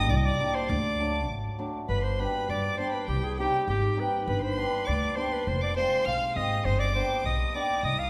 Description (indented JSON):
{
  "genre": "klezmer",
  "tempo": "101 BPM",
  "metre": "2/4",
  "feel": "straight",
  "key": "G phrygian dominant",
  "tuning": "A4 = 439 Hz",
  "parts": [
    { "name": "clear clarinet", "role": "melody", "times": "0.0-8.1 s", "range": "G4 to F5", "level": "-32 LUFS", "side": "equal", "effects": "none" },
    { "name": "rich violin", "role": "second line", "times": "0.0-8.1 s", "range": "G5 to F6", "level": "-37 LUFS", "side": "equal", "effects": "none" },
    { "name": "cimbalom", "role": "accompaniment", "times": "0.0-7.7 s", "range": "F#3 to G4", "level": "-35 LUFS", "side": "equal", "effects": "none" },
    { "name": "upright bass", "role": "bass", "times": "0.0-8.1 s", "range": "F1 to G2", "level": "-32 LUFS", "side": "equal", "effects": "none" }
  ],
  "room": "wet concert hall reverb, RT60 1.8 s",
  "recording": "recorded in a church or concert hall",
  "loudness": "-28 LUFS",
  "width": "mono",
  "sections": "0.0-1.9 A section; 1.9-8.1 B section",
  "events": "none",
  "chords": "0.0 Gm; 0.7 D; 1.9 G; 3.1 Cm; 4.3 G; 5.5 Fm; 6.7 G",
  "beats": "0.09 | 0.69 1.29 | 1.89 2.49 | 3.08 3.68 | 4.28 4.87 | 5.46 6.06 | 6.65 7.24 | 7.83"
}